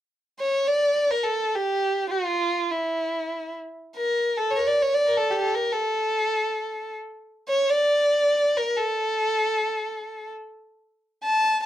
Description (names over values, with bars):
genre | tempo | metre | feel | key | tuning
arabic | free time | none | none | A maqam hijaz | A4 = 438 Hz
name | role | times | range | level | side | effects
warm violin | melody | 0.4-11.6 s | E4 to A5 | -22 LUFS | equal | none
room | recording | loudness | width
moderate studio ambience, RT60 0.5 s | dark, warm production | -22 LUFS | side -12 dB against mid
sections
0.0-11.7 A section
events
none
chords
none